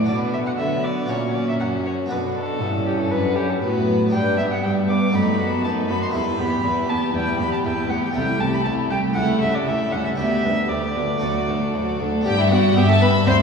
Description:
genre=classical, baroque-style concerto movement with solo episodes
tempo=118 BPM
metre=4/4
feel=straight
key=G major from 4.1 s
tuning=A4 = 440 Hz
part: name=dark violin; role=melody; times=0.0-13.3 s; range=E4 to D6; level=-25 LUFS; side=left 1 dB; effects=none
part: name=rich chamber violin section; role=melody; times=0.0-13.4 s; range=F#4 to C6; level=-30 LUFS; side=left 3 dB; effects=none
part: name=rich chamber violin section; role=second line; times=0.0-13.4 s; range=B3 to E5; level=-27 LUFS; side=left 1 dB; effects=none
part: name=harpsichord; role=accompaniment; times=0.0-13.4 s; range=C2 to B4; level=-26 LUFS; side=equal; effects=none
part: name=warm chamber viola section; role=accompaniment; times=0.0-13.4 s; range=D3 to C4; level=-26 LUFS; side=right 2 dB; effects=none
part: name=warm chamber cello section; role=bass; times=0.0-13.4 s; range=C2 to D3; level=-24 LUFS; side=equal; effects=none
part: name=rich chamber double bass section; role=bass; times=12.3-13.4 s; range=G1 to D2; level=-21 LUFS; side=right 2 dB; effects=none
room=wet concert hall reverb, RT60 2.3 s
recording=heard from further back in the room, small room ambience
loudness=-18 LUFS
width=side -5 dB against mid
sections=0.0-12.3 A section; 12.3-13.4 B section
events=none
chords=0.1 Bm; 1.1 F#/A#; 2.1 Bm; 4.1 G; 5.1 B7/F#; 6.1 Em; 8.2 Am7/C; 9.2 A7/C#; 10.2 G/D; 11.2 D; 12.3 G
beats=| 0.07 0.58 1.09 1.60 | 2.10 2.61 3.11 3.62 | 4.13 4.63 5.13 5.64 | 6.14 6.64 7.14 7.65 | 8.15 8.66 9.17 9.68 | 10.19 10.71 11.22 11.74 | 12.26 12.77 13.27

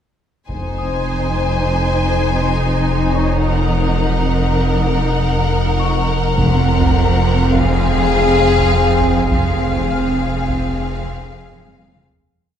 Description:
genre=cinematic, suspense film score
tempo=102 BPM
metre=5/4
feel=straight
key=F phrygian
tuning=A4 = 438 Hz
part: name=rich studio violin section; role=melody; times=0.5-12.0 s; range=F5 to Ab5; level=-24 LUFS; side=left 4 dB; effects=none
part: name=rich studio violin section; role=second line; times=0.5-12.0 s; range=Ab4 to C5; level=-20 LUFS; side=left 3 dB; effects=none
part: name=warm studio viola section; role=accompaniment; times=0.5-12.0 s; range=C4 to Eb4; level=-22 LUFS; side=right 2 dB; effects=none
part: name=rich studio double bass section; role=bass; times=0.5-12.0 s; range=F1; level=-22 LUFS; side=right 2 dB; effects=none
part: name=rich symphonic cello section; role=bass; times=0.5-12.0 s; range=F2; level=-21 LUFS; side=right 2 dB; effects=none
part: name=saturated sub bass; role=drone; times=0.5-12.2 s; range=F1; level=-21 LUFS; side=equal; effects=none
part: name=taiko ensemble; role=drums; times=0.5-1.6, 6.4-12.4 s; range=none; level=-24 LUFS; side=equal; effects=none
part: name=timpani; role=percussion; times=0.5-1.3, 6.4-7.2 s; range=F2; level=-23 LUFS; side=equal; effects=none
part: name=worn celesta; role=texture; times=0.8-12.3 s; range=Db5 to F6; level=-31 LUFS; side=left 4 dB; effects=none
room=wet concert hall reverb, RT60 1.8 s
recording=heard from further back in the room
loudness=-14 LUFS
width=side -9 dB against mid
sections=0.5-12.3 A section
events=fade-out 9.3-12.3; drum fill 11.5-12.3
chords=0.5 Ab/F; 6.4 Fm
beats=| 0.49 1.08 1.67 2.26 2.85 | 3.44 4.02 4.61 5.20 5.79 | 6.38 6.96 7.55 8.14 8.73 | 9.32 9.91 10.49 11.08 11.67

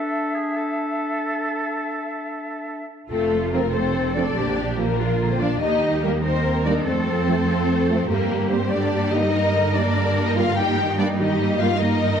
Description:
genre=cinematic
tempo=96 BPM (dotted quarters)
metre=12/8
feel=straight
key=F mixolydian from 3.1 s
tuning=A4 = 440 Hz
part: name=bright concert flute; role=second line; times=0.0-2.9 s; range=E5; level=-31 LUFS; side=left 2 dB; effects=none
part: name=dark clarinet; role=second line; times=0.0-2.9 s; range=D4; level=-29 LUFS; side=left 1 dB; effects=none
part: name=warm oboe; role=second line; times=0.0-2.9 s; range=G#4 to A4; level=-27 LUFS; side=right 2 dB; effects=none
part: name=warm symphonic violin section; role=melody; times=3.1-12.2 s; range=A3 to G4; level=-26 LUFS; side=left 5 dB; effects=none
part: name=dark symphonic violin section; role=second line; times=3.1-12.2 s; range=A4 to G5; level=-26 LUFS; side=left 3 dB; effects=none
part: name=bright symphonic viola section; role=accompaniment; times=3.1-12.2 s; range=D3 to Eb4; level=-27 LUFS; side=right 1 dB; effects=none
part: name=clear symphonic double bass section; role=bass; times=3.1-12.2 s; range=F1 to G2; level=-24 LUFS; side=right 3 dB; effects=none
part: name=rich symphonic cello section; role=bass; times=3.1-12.2 s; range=Eb4 to Bb4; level=-28 LUFS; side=right 3 dB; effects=none
part: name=mellow trombone section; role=sustained chords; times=3.5-11.7 s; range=F3 to C4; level=-28 LUFS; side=right 3 dB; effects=none
room=wet scoring stage reverb, RT60 1.5 s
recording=dark, warm production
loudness=-19 LUFS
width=side -7 dB against mid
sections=0.0-3.1 A section; 3.1-12.2 B section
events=none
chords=0.0 Dsus2; 3.1 F; 4.4 Bb; 5.6 Eb; 6.9 F; 8.1 Gm; 10.6 Eb/G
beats=| 0.56 1.20 1.84 2.47 | 3.11 3.74 4.36 4.99 | 5.62 6.24 6.86 7.48 | 8.10 8.72 9.34 9.96 | 10.58 11.20 11.82

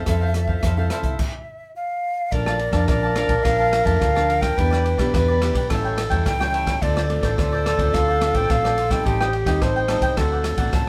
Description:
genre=samba and choro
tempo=107 BPM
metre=4/4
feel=straight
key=unclear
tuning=A4 = 439 Hz
part: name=breathy jazz flute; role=melody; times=0.0-10.9 s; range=D5 to A5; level=-27 LUFS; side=equal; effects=none
part: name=cavaquinho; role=accompaniment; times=0.0-10.9 s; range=D4 to A5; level=-31 LUFS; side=equal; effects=none
part: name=nylon-string guitar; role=accompaniment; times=0.0-10.9 s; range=F2 to A4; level=-32 LUFS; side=equal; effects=none
part: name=hollow-body short-scale fingered electric bass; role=bass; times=0.1-10.9 s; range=A1 to F2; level=-26 LUFS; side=equal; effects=none
part: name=open jazz drum kit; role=drums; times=0.1-10.9 s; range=crash cymbal, hi-hat, kick drum, ride cymbal, rim click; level=-27 LUFS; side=equal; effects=none
part: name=mellow clarinet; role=second line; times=2.3-10.9 s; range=G4 to C5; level=-26 LUFS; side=equal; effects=none
room=moderate studio ambience, RT60 0.5 s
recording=band playing live in one room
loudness=-20 LUFS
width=mono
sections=0.0-2.3 A section; 2.3-10.9 B section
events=stop 1.2-2.3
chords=0.0 Fmaj7; 2.3 Bbmaj7; 4.6 Em7; 5.7 A7; 6.8 Dm7; 9.1 Am7b5; 10.2 D7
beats=| 0.07 0.63 1.20 1.76 | 2.32 2.88 3.45 4.01 | 4.57 5.13 5.69 6.25 | 6.82 7.38 7.94 8.50 | 9.05 9.62 10.18 10.73

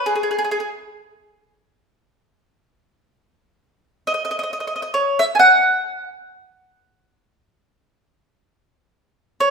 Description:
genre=italian folk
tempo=free time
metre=none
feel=none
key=unclear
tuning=A4 = 443 Hz
part: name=mandolin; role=solo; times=0.0-0.7, 4.1-6.0, 9.4-9.5 s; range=G#4 to G#5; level=-16 LUFS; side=equal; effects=none
room=wet recital hall reverb, RT60 1.3 s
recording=minimal, uncompressed stereo recording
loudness=-16 LUFS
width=side -4 dB against mid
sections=0.0-9.4 A section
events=none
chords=none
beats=free time

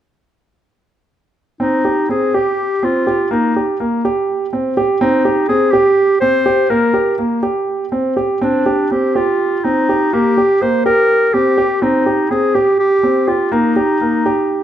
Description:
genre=contemporary instrumental, chamber music in an uneven meter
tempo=247 BPM (eighths)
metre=7/8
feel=straight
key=unclear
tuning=A4 = 440 Hz
part: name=warm clarinet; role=melody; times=1.6-14.6 s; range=D4 to C5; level=-15 LUFS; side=left 1 dB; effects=none
part: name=warm grand piano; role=arpeggios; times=1.6-14.6 s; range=Bb3 to G4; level=-15 LUFS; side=right 2 dB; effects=none
room=moderate recital hall reverb, RT60 1.8 s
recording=none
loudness=-12 LUFS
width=side -10 dB against mid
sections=1.6-14.6 A section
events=none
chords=1.6 Cm; 3.3 Eb; 5.0 Cm; 6.7 Gmadd11/Bb; 8.4 Cmadd9; 10.1 Gm/Bb; 11.8 Cm; 13.5 Eb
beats=| 1.60 1.85 2.09 2.34 2.58 2.83 3.07 | 3.31 3.55 3.79 4.04 4.28 4.52 4.76 | 5.00 5.25 5.49 5.73 5.97 6.21 6.46 | 6.70 6.94 7.18 7.43 7.67 7.92 8.17 | 8.41 8.66 8.91 9.15 9.40 9.64 9.89 | 10.13 10.37 10.61 10.86 11.10 11.34 11.58 | 11.82 12.06 12.30 12.55 12.79 13.03 13.28 | 13.52 13.76 14.01 14.25 14.50

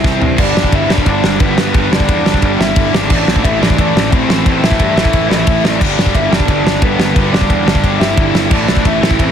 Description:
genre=punk rock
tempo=177 BPM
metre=4/4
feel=straight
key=unclear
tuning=A4 = 440 Hz
part: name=lead guitar through a small cranked amp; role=melody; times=0.0-9.3 s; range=B3 to E5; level=-18 LUFS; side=left 1 dB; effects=overdrive, slapback echo
part: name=crunchy overdriven guitar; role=riff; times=0.0-9.3 s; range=G2 to C4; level=-20 LUFS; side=right 12 dB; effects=none
part: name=high-gain distorted guitar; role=riff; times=0.0-9.3 s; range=G2 to C4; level=-22 LUFS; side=right 1 dB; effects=distortion
part: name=tight distorted guitar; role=riff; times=0.0-9.3 s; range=G2 to C4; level=-20 LUFS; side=left 12 dB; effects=distortion
part: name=fuzz picked electric bass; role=bass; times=0.0-9.3 s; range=G1 to G2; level=-19 LUFS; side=equal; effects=overdrive
part: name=loose indie drum kit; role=drums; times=0.0-9.3 s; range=crash cymbal, kick drum, ride cymbal, snare drum, toms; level=-14 LUFS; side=equal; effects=none
room=studio reverb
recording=dense, heavily limited modern master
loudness=-10 LUFS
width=side -8 dB against mid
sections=0.4-9.3 A section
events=drum fill 0.0-0.4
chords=0.4 G; 3.1 Am; 5.8 G; 8.5 Am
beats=0.04 | 0.39 0.72 1.06 1.41 | 1.74 2.08 2.42 2.76 | 3.10 3.44 3.78 4.12 | 4.46 4.79 5.13 5.47 | 5.81 6.15 6.49 6.82 | 7.16 7.50 7.84 8.18 | 8.51 8.85 9.19

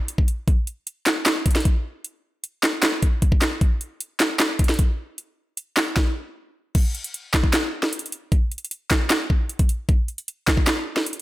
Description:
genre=hip hop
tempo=153 BPM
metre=4/4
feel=half-time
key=none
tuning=none
part: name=trap drum kit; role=drums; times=0.1-11.2 s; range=crash cymbal, handclaps, hi-hat, kick drum, snare drum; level=-19 LUFS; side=equal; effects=none
room=light reverb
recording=none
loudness=-20 LUFS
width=side -17 dB against mid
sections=0.0-6.8 A section; 6.8-11.2 B section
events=none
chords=none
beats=0.08 | 0.48 0.87 1.26 1.65 | 2.04 2.44 2.83 3.22 | 3.61 4.00 4.40 4.79 | 5.18 5.57 5.97 6.36 | 6.75 7.14 7.53 7.93 | 8.32 8.71 9.10 9.49 | 9.89 10.28 10.67 11.06

